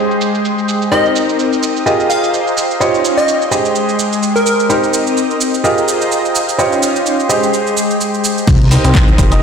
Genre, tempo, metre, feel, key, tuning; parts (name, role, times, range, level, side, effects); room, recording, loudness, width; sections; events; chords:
piano house; 127 BPM; 4/4; swing 57% on 16ths; A4 = 440 Hz
analog string pad; sustained chords; 0.0-9.4 s; Ab3 to Eb6; -18 LUFS; left 1 dB; ensemble chorus, sidechain pumping
clear upright piano; riff; 0.0-9.4 s; Eb4 to Eb5; -15 LUFS; right 1 dB; sidechain pumping, dub echo
garage drum kit; drums; 0.1-9.4 s; crash cymbal, handclaps, hi-hat, shaker; -21 LUFS; right 4 dB; low-pass filter on perc, low-pass filter on hats, low-pass filter on cymbals, low-pass filter on snare, low-pass filter on room
plucky unison lead; melody; 0.9-4.7 s; Bb4 to F5; -18 LUFS; left 1 dB; dub echo
fat analog bass; bass; 8.5-9.4 s; F1 to C2; -11 LUFS; equal; sidechain pumping
electronic kick drum; drums; 8.5-9.3 s; -11 LUFS; equal
moderate lush hall reverb, RT60 1.7 s; played on a big sound system in a bare room, stone room reverb; -11 LUFS; side -6 dB against mid
0.0-8.5 A section
0.0 Abmaj7; 0.9 Cm7; 1.9 Fm11; 2.8 Eb13; 3.5 Abmaj7; 4.7 Cm7; 5.6 Fm11; 6.6 Eb13; 7.3 Abmaj7; 8.5 Cm7